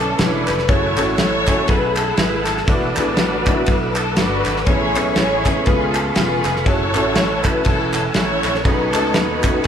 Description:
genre	uptempo gospel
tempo	121 BPM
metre	4/4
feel	swing 58% on 8ths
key	unclear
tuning	A4 = 440 Hz
part	warm studio string section	melody	0.0-9.7 s	C#4 to C#5	-20 LUFS	left 1 dB	none
part	clear upright piano	accompaniment	0.0-9.7 s	A2 to G#5	-24 LUFS	left 2 dB	none
part	percussive tonewheel organ	sustained chords	0.0-9.7 s	A3 to E6	-26 LUFS	right 5 dB	fast rotary speaker, chorus vibrato
part	slap bass	bass	0.0-9.7 s	E1 to D#2	-25 LUFS	equal	none
part	warm soul drum kit	drums	0.2-9.7 s	kick drum, ride cymbal, snare drum	-20 LUFS	equal	none
part	group handclap	percussion	0.5-9.5 s	none	-29 LUFS	right 2 dB	none
room	moderate large studio reverb, RT60 1.4 s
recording	band playing live in one room, lossy compression artefacts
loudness	-15 LUFS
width	side -8 dB against mid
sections	0.0-9.7 A section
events	none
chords	0.0 Bm11; 0.7 F#m9; 2.7 E9sus4; 4.7 Amaj9; 5.7 C#7b13; 6.7 F#m9; 8.7 B13

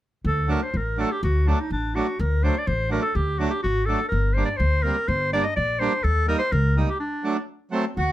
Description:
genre	klezmer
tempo	124 BPM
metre	2/4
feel	straight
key	D phrygian dominant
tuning	A4 = 441 Hz
part	upright bass	bass	0.2-8.1 s	G1 to Eb2	-23 LUFS	equal	none
part	bright clarinet	melody	0.3-8.1 s	D4 to Eb5	-25 LUFS	equal	none
part	accordion	accompaniment	0.5-7.9 s	F#3 to Eb4	-26 LUFS	right 3 dB	none
part	accordion	second line	8.0-8.1 s	F#4	-25 LUFS	right 3 dB	none
room	light reverb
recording	none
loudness	-21 LUFS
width	side -14 dB against mid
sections	0.2-8.0 A section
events	break 7.0-8.0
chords	0.2 D; 4.1 Gm; 6.1 Eb; 7.0 D

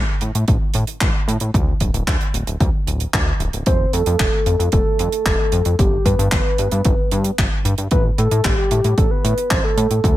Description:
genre	italo disco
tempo	113 BPM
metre	4/4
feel	straight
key	A minor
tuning	A4 = 440 Hz
part	chorused synth bass	bass	0.0-10.2 s	D1 to A2	-20 LUFS	equal	none
part	damped 70s drum kit	drums	0.2-10.1 s	handclaps, hi-hat	-24 LUFS	right 1 dB	gated reverb
part	electronic kick drum	drums	0.5-10.1 s	none	-19 LUFS	equal	overdrive
part	soft octave-layered synth lead	melody	3.7-10.2 s	G4 to C5	-21 LUFS	equal	chorus, ping-pong delay
room	small room reverb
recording	none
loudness	-16 LUFS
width	side -14 dB against mid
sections	0.0-10.2 A section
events	none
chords	0.0 N.C.; 3.7 F; 5.8 G; 7.9 Am9

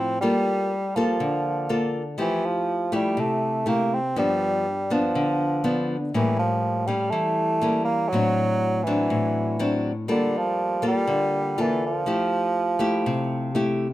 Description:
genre	bossa nova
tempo	122 BPM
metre	4/4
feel	straight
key	unclear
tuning	A4 = 439 Hz
part	warm bassoon	melody	0.0-13.8 s	D3 to C4	-24 LUFS	right 2 dB	none
part	nylon-string guitar	accompaniment	0.0-13.9 s	G2 to A4	-24 LUFS	left 1 dB	none
room	light reverb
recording	close, detailed microphones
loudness	-21 LUFS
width	side -15 dB against mid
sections	0.0-13.9 A section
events	none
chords	0.2 Gm9; 2.2 Fmaj9; 4.2 G7; 6.1 A7b9; 8.1 D7/A; 10.1 Gm9; 12.1 Fmaj9

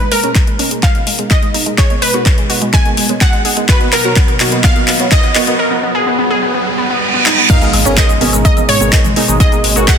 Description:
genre	progressive house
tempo	126 BPM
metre	4/4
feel	straight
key	G# dorian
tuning	A4 = 440 Hz
part	wide unison pluck	melody	0.0-10.0 s	A#4 to G#5	-18 LUFS	right 1 dB	sidechain pumping, dub echo
part	warm analog pad	sustained chords	0.0-10.0 s	B2 to D#4	-25 LUFS	equal	chorus, sidechain pumping
part	glassy wavetable pluck	arpeggios	0.0-10.0 s	G#3 to A#4	-18 LUFS	left 1 dB	chorus, sidechain pumping, tape echo
part	deep mellow chord stab	stabs	0.0-9.9 s	B3 to D#5	-20 LUFS	right 4 dB	chorus, phaser, sidechain pumping, tape echo
part	deep house drum kit	drums	0.0-10.0 s	crash cymbal, handclaps, hi-hat, shaker	-16 LUFS	left 2 dB	high-pass filter on perc, small room ambience, high-pass filter on snare, high-pass filter on hats, high-pass filter on cymbals
part	riser, reverse cymbal and impact	sound effects	2.6-9.4 s	none	-19 LUFS	right 2 dB	none
part	electronic kick drum	drums	0.4-10.0 s	none	-12 LUFS	equal	small room ambience
part	woodblock and congas	percussion	7.5-9.9 s	none	-26 LUFS	right 3 dB	none
part	dark detuned saw bass	bass	7.7-9.9 s	G#1 to G#2	-18 LUFS	equal	sidechain pumping
room	light reverb, digital ambience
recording	dense, heavily limited modern master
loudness	-9 LUFS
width	side -7 dB against mid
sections	0.0-7.5 A section; 7.5-10.0 B section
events	build-up 0.0-7.5; drum fill 0.0-5.6, 7.3; filter sweep on synth arpeggio sound 0.0-7.5; filter sweep on synth stab 0.0-7.5; riser 2.6-7.5; break 5.6-7.5; reverse cymbal 6.5-7.5; drop 7.5-10.0; impact 7.5-9.4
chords	0.0 G#madd9

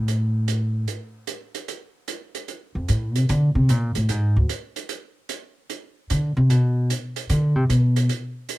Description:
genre	jazz piano trio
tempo	150 BPM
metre	4/4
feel	swing 67% on 8ths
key	unclear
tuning	A4 = 441 Hz
part	upright bass	bass	0.0-8.1 s	D2 to D3	-19 LUFS	equal	none
part	hi-hat	drums	0.1-8.6 s	none	-32 LUFS	right 7 dB	none
room	little or no reverb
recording	close, detailed microphones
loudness	-19 LUFS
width	side -18 dB against mid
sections	0.0-8.6 A section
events	upright bass solo 0.0-8.6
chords	none

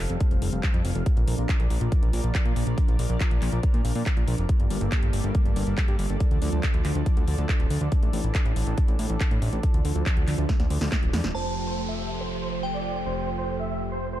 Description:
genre	uplifting trance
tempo	140 BPM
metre	4/4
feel	straight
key	unclear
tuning	A4 = 440 Hz
part	lush unison pad	sustained chords	0.0-14.2 s	E3 to F5	-32 LUFS	right 1 dB	chorus, sidechain pumping
part	fat analog bass	bass	0.0-14.2 s	D1 to Bb2	-27 LUFS	equal	sidechain pumping
part	big-room dance drum kit	drums	0.1-11.3 s	handclaps, hi-hat, snare drum	-34 LUFS	equal	sidechain pumping on hats, low-pass filter on hats, low-pass filter on snare, sidechain pumping on cymbals, low-pass filter on cymbals
part	electronic kick drum	drums	0.2-11.0 s	none	-23 LUFS	equal	none
part	big supersaw lead	melody	11.3-14.2 s	C5 to E5	-33 LUFS	right 2 dB	sidechain pumping, low-pass filter, ping-pong delay
part	glassy synth bell	second line	11.3-14.2 s	G5 to A5	-35 LUFS	equal	chorus, ping-pong delay
part	downlifter	sound effects	11.3-14.2 s	none	-38 LUFS	equal	none
room	digital ambience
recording	dark, warm production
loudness	-22 LUFS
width	side -13 dB against mid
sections	0.0-11.3 A section; 11.3-14.2 B section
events	drum fill 10.5-11.3; filter sweep on supersaw synth 11.3-14.2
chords	0.0 Fadd9; 1.1 Bb; 4.5 Gmadd9; 6.2 Dm; 7.9 Asus4; 9.6 Dm; 11.3 Fadd9

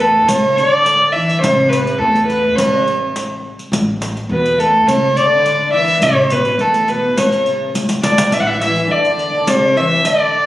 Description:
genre	Arabic maqam ensemble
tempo	105 BPM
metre	4/4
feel	straight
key	A maqam rast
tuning	A4 = 440 Hz
part	dark violin	melody	0.0-10.5 s	A4 to F#5	-13 LUFS	equal	none
part	oud	second line	0.0-10.5 s	A3 to E4	-24 LUFS	right 2 dB	none
part	warm studio cello section	second line	0.0-10.5 s	A2 to E3	-21 LUFS	left 1 dB	none
part	upright bass	bass	0.0-10.4 s	A1 to E2	-26 LUFS	equal	none
part	riq	percussion	0.0-10.2 s	none	-21 LUFS	equal	none
room	wet recital hall reverb, RT60 1.6 s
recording	recorded on a phone in the room, club reverb, compression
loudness	-12 LUFS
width	side -15 dB against mid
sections	0.0-10.5 A section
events	drum fill 7.7-8.3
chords	none

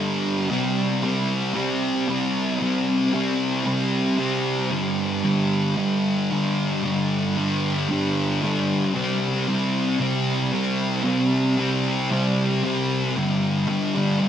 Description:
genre	rock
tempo	114 BPM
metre	4/4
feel	straight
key	unclear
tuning	A4 = 440 Hz
part	thick fuzz guitar	solo	0.0-14.3 s	G2 to C4	-20 LUFS	equal	distortion, wide subtle chorus, tape echo
room	moderate scoring stage reverb, RT60 1.5 s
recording	none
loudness	-20 LUFS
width	side -9 dB against mid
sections	0.0-13.2 A section; 13.2-14.3 B section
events	none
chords	0.0 G5; 0.5 C5; 4.7 G5; 8.9 C5; 13.2 G5

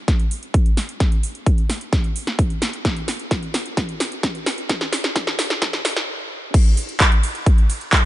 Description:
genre	EDM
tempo	130 BPM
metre	4/4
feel	straight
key	none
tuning	none
part	big-room dance drum kit	drums	0.1-8.0 s	crash cymbal, handclaps, hi-hat, ride cymbal, snare drum	-22 LUFS	equal	none
part	electronic kick drum	drums	0.1-8.0 s	none	-17 LUFS	equal	none
room	light reverb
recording	high-pass filter, nothing above 10.4 kHz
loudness	-18 LUFS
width	side -15 dB against mid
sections	0.0-6.5 A section; 6.5-8.1 B section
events	build-up 0.0-6.5; drum fill 0.0-6.1; filter sweep 0.0-6.5; stop 6.1-6.5; drop 6.5-8.1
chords	none

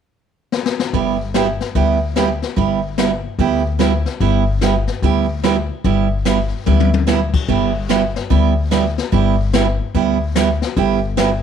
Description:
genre	country, western swing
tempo	146 BPM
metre	4/4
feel	swing 64% on 8ths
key	G major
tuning	A4 = 442 Hz
part	jazz brush drum kit	drums	0.5-11.4 s	brushed snare drum, crash cymbal, hi-hat, kick drum, snare drum, toms	-22 LUFS	left 8 dB	none
part	picked steel-string acoustic guitar	accompaniment	0.9-11.3 s	G3 to G4	-17 LUFS	right 8 dB	none
part	upright bass	bass	0.9-11.4 s	G1 to D2	-19 LUFS	left 2 dB	none
room	light reverb, small room ambience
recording	1960s-style stereo with parts hard left and right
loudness	-15 LUFS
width	side -8 dB against mid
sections	0.9-7.5 A section; 7.5-11.4 B section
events	drum fill 0.5-0.9, 6.7-7.1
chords	0.0 N.C.; 0.9 G6

